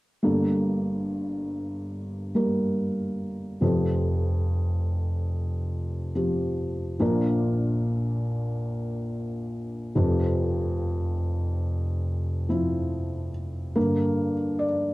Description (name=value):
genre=pop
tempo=71 BPM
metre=4/4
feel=straight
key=unclear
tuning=A4 = 440 Hz
part: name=felt-muted upright piano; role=accompaniment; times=0.2-14.9 s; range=F1 to D5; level=-24 LUFS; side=equal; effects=cassette tape
room=wet small room reverb, RT60 0.5 s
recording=home recording on cassette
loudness=-24 LUFS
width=side -19 dB against mid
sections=0.2-13.8 A section; 13.8-14.9 B section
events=felt piano solo 13.8-14.9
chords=0.2 Gmadd9; 3.6 Fsus2; 7.0 Bb; 10.0 Fsus2; 13.8 Gm